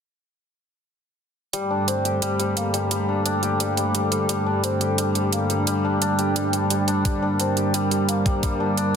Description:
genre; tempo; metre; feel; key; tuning
half-time drum and bass; 174 BPM; 4/4; swing 54% on 16ths, half-time; G minor; A4 = 440 Hz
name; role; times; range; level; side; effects
dark analog pad; sustained chords; 1.5-9.0 s; G3 to Bb4; -23 LUFS; right 2 dB; chorus, sidechain pumping
santur; arpeggios; 1.5-9.0 s; G3 to G4; -24 LUFS; left 3 dB; low-pass filter, ping-pong delay
electronic hi-hat; drums; 1.5-8.8 s; none; -26 LUFS; right 4 dB; overdrive
electronic kick drum; drums; 7.1-8.5 s; none; -23 LUFS; equal; none
room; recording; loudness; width
moderate lush hall reverb, RT60 1.9 s, digital ambience; dense, heavily limited modern master; -20 LUFS; side -7 dB against mid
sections
1.5-9.0 A section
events
none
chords
1.5 Gm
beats
| 1.53 1.88 2.22 2.57 | 2.91 3.26 3.60 3.95 | 4.29 4.64 4.98 5.33 | 5.67 6.02 6.36 6.71 | 7.05 7.40 7.74 8.09 | 8.43 8.78

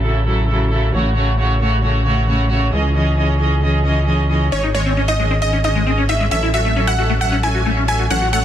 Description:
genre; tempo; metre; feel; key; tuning
trance; 134 BPM; 4/4; straight; unclear; A4 = 443 Hz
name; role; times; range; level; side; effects
rich chamber string section; sustained chords; 0.0-8.4 s; C#3 to E5; -20 LUFS; right 1 dB; low-pass filter
gritty driven synth bass; bass; 0.0-8.4 s; G#1 to C#2; -18 LUFS; equal; none
wide unison pluck; melody; 4.5-8.4 s; C#5 to G#5; -22 LUFS; equal; cassette tape, digital delay
supersaw stab; second line; 4.5-8.4 s; C#5 to G#5; -23 LUFS; right 1 dB; tape echo
liquid acid bass; arpeggios; 4.5-8.4 s; G#3 to F#4; -22 LUFS; left 3 dB; lush chorus, tape echo
room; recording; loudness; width
little or no reverb; dense, heavily limited modern master; -14 LUFS; side -10 dB against mid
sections
0.0-8.4 A section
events
none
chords
0.0 A6; 0.9 F#m/A; 2.7 C#madd9; 4.5 G#sus4; 6.3 A6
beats
0.04 0.49 | 0.94 1.39 1.83 2.28 | 2.73 3.18 3.63 4.07 | 4.52 4.97 5.42 5.87 | 6.31 6.76 7.21 7.66 | 8.10

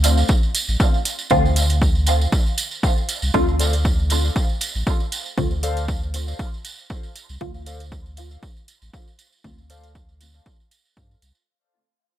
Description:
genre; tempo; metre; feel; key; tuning
dub techno; 118 BPM; 4/4; swing 54% on 16ths; D minor; A4 = 442 Hz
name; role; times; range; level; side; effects
warm sub bass; bass; 0.0-11.3 s; A1 to G2; -21 LUFS; equal; sidechain pumping
electronic hi-hat; drums; 0.0-11.3 s; none; -27 LUFS; right 2 dB; overdrive
tambourine; percussion; 0.0-11.4 s; none; -28 LUFS; right 4 dB; none
electronic kick drum; drums; 0.3-11.1 s; none; -20 LUFS; equal; overdrive
filtered dub chord stab; stabs; 1.3-9.6 s; D3 to F4; -24 LUFS; equal; phaser, sidechain pumping, dub echo
warbly lo-fi synth keys; riff; 3.6-9.9 s; A4 to F5; -34 LUFS; left 3 dB; chorus, vintage 12-bit sampler grit, sidechain pumping, low-pass filter, dub echo
room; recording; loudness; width
light reverb, digital ambience; none; -18 LUFS; side -12 dB against mid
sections
0.0-11.5 A section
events
fade-out 0.0-11.5; filter sweep on synth stab 0.0-11.5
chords
0.0 Dm7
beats
0.29 0.80 | 1.31 1.82 2.32 2.83 | 3.34 3.85 4.36 4.87 | 5.38 5.88 6.39 6.90 | 7.41 7.92 8.43 8.94 | 9.44 9.95 10.46 10.97

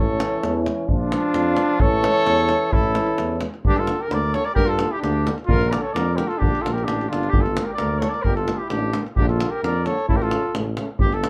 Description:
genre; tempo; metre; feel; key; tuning
balkan folk, Balkan brass band; 130 BPM; 2/4; straight; unclear; A4 = 440 Hz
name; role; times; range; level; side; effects
warm cornet; melody; 0.0-11.3 s; F4 to D5; -27 LUFS; equal; none
dark trumpet; second line; 0.0-10.5 s; D4 to Bb4; -28 LUFS; equal; none
clear trombone; accompaniment; 0.0-11.3 s; A3 to D4; -35 LUFS; equal; none
warm euphonium; accompaniment; 0.0-11.3 s; C#3 to F3; -33 LUFS; equal; none
mellow tuba; bass; 0.0-11.3 s; G1 to G2; -28 LUFS; equal; none
davul; percussion; 0.2-11.3 s; none; -26 LUFS; equal; none
room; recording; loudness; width
moderate small room reverb, RT60 0.5 s; band playing live in one room; -21 LUFS; mono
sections
0.0-3.6 A section; 3.6-11.0 B section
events
none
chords
0.0 A; 0.9 Bb; 1.8 A; 3.6 Gm; 5.5 Bb; 7.3 Gm; 9.2 Bb; 10.1 A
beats
0.43 | 0.89 1.35 | 1.81 2.27 | 2.73 3.19 | 3.65 4.11 | 4.57 5.03 | 5.49 5.95 | 6.41 6.87 | 7.33 7.79 | 8.25 8.71 | 9.17 9.63 | 10.09 10.55 | 11.01

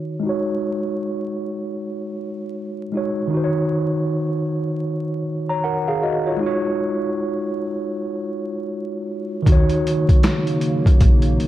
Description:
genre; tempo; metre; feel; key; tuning
lo-fi hip hop; 78 BPM; 4/4; swing 62% on 16ths; Eb minor; A4 = 439 Hz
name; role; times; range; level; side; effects
tine electric piano; accompaniment; 0.0-11.5 s; Eb3 to Bb5; -21 LUFS; right 1 dB; medium stereo tremolo, low-pass filter
dark analog pad; sustained chords; 10.0-11.5 s; Db3 to Eb4; -25 LUFS; equal; chorus
upright bass; bass; 9.5-11.4 s; Bb1 to Eb2; -20 LUFS; equal; none
boom bap sampler-style drum kit; drums; 9.5-11.5 s; handclaps, hi-hat, kick drum, snare drum; -15 LUFS; equal; none
room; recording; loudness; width
light reverb, digital ambience; dark, warm production, vinyl crackle; -19 LUFS; side -14 dB against mid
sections
0.0-9.5 A section; 9.5-11.5 B section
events
filter sweep on tine electric piano 0.0-9.5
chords
0.2 Ab7sus4; 3.3 Ebm7; 6.4 Ab7sus4; 9.5 Ebm7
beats
| 0.23 1.00 1.77 2.54 | 3.31 4.08 4.85 5.62 | 6.39 7.16 7.92 8.69 | 9.46 10.23 11.00

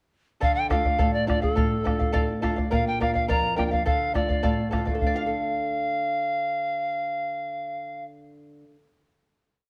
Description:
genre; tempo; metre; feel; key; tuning
andean folk, Andean ensemble; 105 BPM; 2/4; straight; D minor; A4 = 439 Hz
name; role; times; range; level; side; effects
bright reedy polished pan flute; melody; 0.4-8.0 s; A4 to Bb5; -28 LUFS; equal; none
charango; accompaniment; 0.4-8.9 s; A4 to F5; -33 LUFS; equal; none
nylon-string guitar; accompaniment; 0.4-8.9 s; F2 to A4; -32 LUFS; equal; none
bombo; percussion; 0.4-5.3 s; none; -29 LUFS; equal; none
room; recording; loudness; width
moderate recital hall reverb, RT60 1.4 s; close, detailed microphones; -25 LUFS; mono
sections
0.4-5.0 A section; 5.0-7.3 final chord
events
none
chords
0.4 Dm; 2.7 Bb; 3.9 Dm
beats
| 0.43 1.00 | 1.57 2.15 | 2.72 3.29 | 3.87 4.44 | 5.01 5.58 | 6.15 6.72

